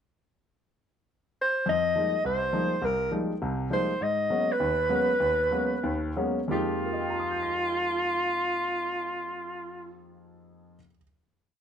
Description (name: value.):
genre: jazz.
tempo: 174-205 BPM.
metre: 4/4.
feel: swing 62% on 8ths.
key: F minor.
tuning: A4 = 441 Hz.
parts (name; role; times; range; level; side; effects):
mellow soprano saxophone; melody; 1.4-10.0 s; F4 to Eb5; -26 LUFS; equal; plate reverb.
clear grand piano; accompaniment; 1.7-11.0 s; C2 to Bb6; -30 LUFS; equal; none.
room: moderate studio reverb, RT60 0.5 s.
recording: none.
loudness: -25 LUFS.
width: side -8 dB against mid.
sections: 0.5-1.7 pickup bar; 1.7-6.5 A section; 6.5-9.3 final chord.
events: slowing down 4.0-6.5.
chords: 0.5 N.C.; 1.7 Fm11; 4.0 Abm11; 6.5 Fm11.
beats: | 0.49 0.78 1.07 1.37 | 1.66 1.95 2.25 2.54 | 2.83 3.12 3.42 3.71 | 4.00 4.30 4.59 4.89 | 5.20 5.51 5.83 6.16 | 6.50 6.85 7.19 7.54 | 7.88 8.23 8.57 8.92.